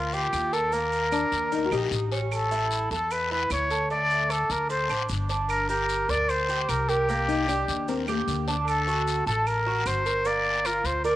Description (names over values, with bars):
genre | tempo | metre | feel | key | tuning
latin, Cuban son and guajira | 151 BPM | 4/4 | straight | unclear | A4 = 440 Hz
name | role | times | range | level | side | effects
trumpet with straight mute | melody | 0.0-11.2 s | F4 to D5 | -26 LUFS | equal | cassette tape
Cuban tres | arpeggios | 0.0-11.2 s | A3 to Bb4 | -30 LUFS | right 4 dB | cassette tape
upright bass | bass | 0.0-11.2 s | G1 to E2 | -31 LUFS | left 1 dB | none
maracas | percussion | 0.1-11.2 s | none | -46 LUFS | right 8 dB | none
claves | percussion | 0.3-10.9 s | none | -39 LUFS | right 6 dB | none
guiro | percussion | 0.3-11.2 s | none | -36 LUFS | left 8 dB | none
nylon-string guitar | second line | 1.1-2.2, 7.3-8.5 s | Bb3 to G4 | -29 LUFS | left 6 dB | cassette tape
room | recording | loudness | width
moderate spring reverb, RT60 1.8 s, small room ambience | home recording on cassette | -23 LUFS | side -14 dB against mid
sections
0.0-11.2 A section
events
none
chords
0.0 Gm7; 0.7 Ebmaj7; 2.3 A; 3.9 D5; 5.5 Gm; 7.1 Cm7; 8.7 D; 10.3 Gm7